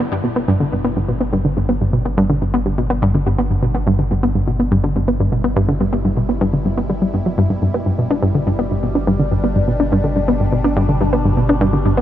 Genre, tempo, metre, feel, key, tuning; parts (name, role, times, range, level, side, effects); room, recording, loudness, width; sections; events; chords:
ambient, sequencer-driven space music; 124 BPM; 4/4; straight; G major; A4 = 441 Hz
phased analog pad; sustained chords; 0.0-12.0 s; B2 to E4; -26 LUFS; left 2 dB; phaser, chorus
analog pluck; riff; 0.0-12.0 s; G2 to D4; -16 LUFS; equal; chorus, tape echo
warm sub bass; bass; 0.0-12.0 s; G1; -23 LUFS; equal; tube saturation
moderate huge ambient reverb, RT60 8.0 s; -15 LUFS; side -12 dB against mid
0.0-12.0 A section
fade-in on analog synth pad 0.0-12.0
0.0 G